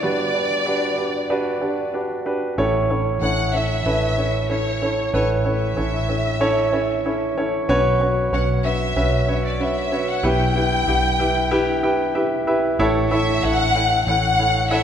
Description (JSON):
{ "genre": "piano-driven pop", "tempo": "94 BPM", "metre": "4/4", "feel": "straight", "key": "unclear", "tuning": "A4 = 440 Hz", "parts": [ { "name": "warm studio violin section", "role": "melody", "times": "0.0-14.8 s", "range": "C#5 to G5", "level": "-23 LUFS", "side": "left 2 dB", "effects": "none" }, { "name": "warm grand piano", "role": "accompaniment", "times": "0.0-14.8 s", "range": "G1 to B5", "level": "-20 LUFS", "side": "right 1 dB", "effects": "none" }, { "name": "vintage muted fingered electric bass", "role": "bass", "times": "2.6-14.8 s", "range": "A1 to B1", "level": "-24 LUFS", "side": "left 1 dB", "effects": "none" } ], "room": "wet church reverb, RT60 2.8 s", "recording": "recorded in a church or concert hall", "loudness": "-18 LUFS", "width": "side -8 dB against mid", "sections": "0.0-2.6 A section; 2.6-12.8 B section; 12.8-14.8 C section", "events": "grand piano fill 11.5-12.8", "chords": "0.0 Gmaj7; 2.6 A; 7.7 Bsus2; 10.2 Em/B; 12.8 A" }